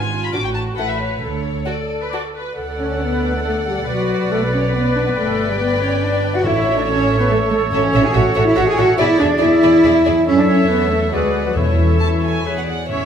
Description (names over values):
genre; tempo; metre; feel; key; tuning
quick classical-period movement for symphony orchestra; 139 BPM; 3/4; straight; D major, A major from 7.7 s; A4 = 441 Hz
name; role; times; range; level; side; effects
warm chamber violin section; melody; 0.0-13.1 s; C#5 to D6; -28 LUFS; left 5 dB; none
rich symphonic viola section; accompaniment; 0.0-13.1 s; C#4 to D5; -26 LUFS; right 1 dB; none
dark chamber cello section; bass; 0.0-13.1 s; G#2 to G#4; -20 LUFS; right 2 dB; none
dark chamber double bass section; bass; 0.0-13.1 s; G1 to F#2; -23 LUFS; right 2 dB; none
warm chamber violin section; second line; 0.3-13.1 s; D4 to A5; -27 LUFS; left 1 dB; none
clear oboe; second line; 2.6-12.7 s; B4 to F#5; -25 LUFS; right 2 dB; none
mellow clarinet; second line; 2.6-12.7 s; G#4 to B4; -26 LUFS; left 3 dB; none
bright flute section; second line; 2.8-12.4 s; E4 to G#5; -24 LUFS; right 1 dB; none
dark French horn section; sustained chords; 2.8-13.1 s; E3 to G#4; -22 LUFS; left 5 dB; none
timpani; percussion; 6.4-8.3, 11.6-13.1 s; E2 to A2; -21 LUFS; left 1 dB; none
room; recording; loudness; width
wet recital hall reverb, RT60 1.5 s; minimal, uncompressed stereo recording; -14 LUFS; side -8 dB against mid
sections
0.0-2.6 A section; 2.6-12.9 B section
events
none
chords
0.3 D/A; 0.8 A; 1.2 D5; 2.6 D; 3.9 Bm; 5.2 G; 6.5 A; 9.0 E7; 10.3 F#m7; 11.1 Bm/D; 11.6 A/E; 12.5 E